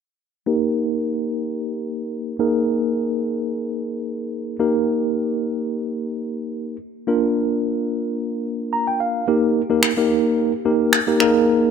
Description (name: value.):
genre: dance-pop.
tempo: 109 BPM.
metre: 4/4.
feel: straight.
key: Eb major.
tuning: A4 = 440 Hz.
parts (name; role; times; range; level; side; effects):
mellow tine electric piano; accompaniment; 0.5-11.7 s; Bb3 to Bb5; -19 LUFS; equal; medium stereo tremolo, low-pass filter.
electronic finger snaps; drums; 9.8-11.3 s; none; -21 LUFS; equal; none.
room: moderate lush hall reverb, RT60 2.5 s.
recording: none.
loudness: -19 LUFS.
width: side -7 dB against mid.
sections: 0.5-9.3 A section; 9.3-11.7 B section.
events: filter sweep on tine electric piano 0.5-9.3; tine electric piano fill 8.5-9.3.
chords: 0.5 Eb; 2.4 Absus2; 4.6 Eb; 7.1 Bb; 9.3 Eb; 11.2 Absus2.